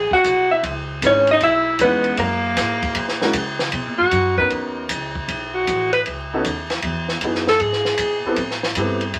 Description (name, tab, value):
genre	jazz, small-group swing and bop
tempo	155 BPM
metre	4/4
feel	swing 66% on 8ths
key	B major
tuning	A4 = 441 Hz
part	vintage hollow-body jazz guitar	melody	0.0-3.3 s	A#4 to G#5	-20 LUFS	equal	none
part	clear alto saxophone	second line	0.0-8.3 s	A#3 to B4	-21 LUFS	equal	none
part	upright bass	bass	0.0-9.2 s	G#1 to C#3	-32 LUFS	equal	none
part	compact cocktail drum kit	drums	0.1-9.2 s	hi-hat, kick drum, ride cymbal, snare drum	-27 LUFS	equal	none
part	warm upright piano	accompaniment	1.0-9.0 s	G#3 to C#5	-26 LUFS	equal	none
room	wet club ambience, RT60 0.5 s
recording	vinyl crackle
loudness	-20 LUFS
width	mono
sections	0.0-3.7 A section; 3.7-9.2 B section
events	alto saxophone solo 3.7-9.2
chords	0.0 G#m7b13; 0.6 C#m7; 2.2 F#add9; 3.7 Bmaj9; 5.3 B9; 6.8 Emaj7; 8.4 Am7